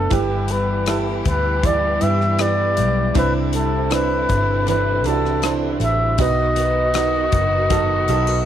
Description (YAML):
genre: pop ballad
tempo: 79 BPM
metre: 4/4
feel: straight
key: unclear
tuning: A4 = 445 Hz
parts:
  - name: breathy flugelhorn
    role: melody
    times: 0.0-8.5 s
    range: G4 to E5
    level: -20 LUFS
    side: equal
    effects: none
  - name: bright upright piano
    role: accompaniment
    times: 0.0-8.5 s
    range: G2 to E5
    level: -24 LUFS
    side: right 12 dB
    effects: none
  - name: warm studio string section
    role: sustained chords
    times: 0.0-8.5 s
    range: D3 to G4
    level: -29 LUFS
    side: left 1 dB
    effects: none
  - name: picked steel-string acoustic guitar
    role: arpeggios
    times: 0.0-8.5 s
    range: G2 to A4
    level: -28 LUFS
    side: left 11 dB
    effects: none
  - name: vintage muted fingered electric bass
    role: bass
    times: 0.0-8.5 s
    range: F#1 to G2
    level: -22 LUFS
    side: left 1 dB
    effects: none
  - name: modern studio drum kit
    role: drums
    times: 0.1-8.4 s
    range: hi-hat, kick drum, rim click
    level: -24 LUFS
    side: left 2 dB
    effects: none
room: light reverb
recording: 1960s-style stereo with parts hard left and right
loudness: -16 LUFS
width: side -10 dB against mid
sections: 0.0-8.5 A section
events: upright piano fill 7.7-8.5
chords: 0.1 G6; 3.1 Cadd9; 6.2 B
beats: | 0.11 0.87 1.63 2.39 | 3.15 3.91 4.67 5.43 | 6.19 6.95 7.71